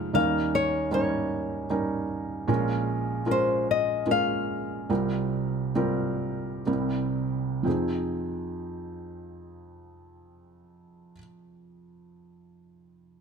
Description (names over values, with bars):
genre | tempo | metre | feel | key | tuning
folk | 59-77 BPM | 3/4 | straight | F minor | A4 = 440 Hz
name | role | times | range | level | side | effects
nylon-string guitar | melody | 0.0-6.7 s | C5 to F5 | -26 LUFS | left 4 dB | none
felt-muted upright piano | accompaniment | 0.0-13.2 s | F1 to Eb5 | -27 LUFS | right 2 dB | none
room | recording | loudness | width
little or no reverb | close, detailed microphones | -25 LUFS | side -6 dB against mid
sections
0.0-7.7 A section; 7.7-10.7 B section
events
slowing down 2.5-7.7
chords
0.1 Eb7; 2.5 Bbm7; 4.9 C7sus4; 6.7 C7; 7.7 Fm7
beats
| 0.15 0.93 1.71 | 2.49 3.27 4.07 | 4.90 5.77 6.68 | 7.67 8.68 9.69